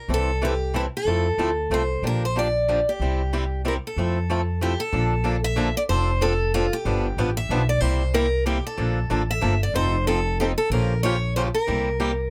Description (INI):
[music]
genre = acoustic string swing (jazz manouche)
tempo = 187 BPM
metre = 3/4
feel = swing 60% on 8ths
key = F major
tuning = A4 = 441 Hz
[part]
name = picked steel-string acoustic guitar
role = melody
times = 0.0-12.3 s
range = E4 to E5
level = -28 LUFS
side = equal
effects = none
[part]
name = picked swing-style acoustic guitar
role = accompaniment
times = 0.1-12.1 s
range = C3 to A4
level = -29 LUFS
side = equal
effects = none
[part]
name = upright bass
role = bass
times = 0.1-12.3 s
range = F1 to F2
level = -27 LUFS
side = equal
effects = none
[sound]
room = little or no reverb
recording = close, detailed microphones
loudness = -23 LUFS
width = mono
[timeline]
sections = 0.0-4.9 A section; 4.9-12.3 B section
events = none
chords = 0.1 C6; 1.1 Fmaj7; 2.0 Bb6; 3.0 C; 4.0 Fmaj7; 4.9 Bbmaj7; 5.9 F6; 6.9 G7; 7.8 C7; 8.8 Bbmaj7; 9.8 F7; 10.7 Bbm6; 11.7 C7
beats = | 0.09 0.41 0.74 | 1.06 1.38 1.70 | 2.03 2.35 2.67 | 2.99 3.32 3.64 | 3.96 4.28 4.61 | 4.93 5.25 5.57 | 5.89 6.22 6.54 | 6.86 7.18 7.50 | 7.82 8.14 8.47 | 8.79 9.11 9.43 | 9.75 10.07 10.39 | 10.72 11.04 11.36 | 11.68 12.00